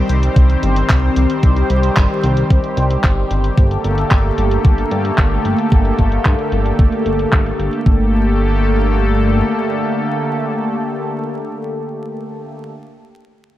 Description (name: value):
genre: italo disco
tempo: 112 BPM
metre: 4/4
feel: straight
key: G minor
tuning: A4 = 440 Hz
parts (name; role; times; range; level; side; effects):
- lush unison pad; sustained chords; 0.0-12.7 s; D3 to C5; -18 LUFS; left 1 dB; chorus, phaser, vintage 12-bit sampler grit
- chorused synth bass; bass; 0.0-9.4 s; G1 to G2; -17 LUFS; equal; tube saturation
- clean 12-bit digital drum machine; drums; 0.1-7.8 s; handclaps, hi-hat; -23 LUFS; equal; overdrive, low-pass filter on hats, low-pass filter on snare
- electronic kick drum; drums; 0.4-8.0 s; none; -12 LUFS; equal; overdrive
room: light reverb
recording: dark, warm production, vinyl crackle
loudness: -13 LUFS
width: side -14 dB against mid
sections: 0.0-7.9 A section; 7.9-12.1 B section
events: none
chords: 0.0 Cm; 3.6 Gmadd9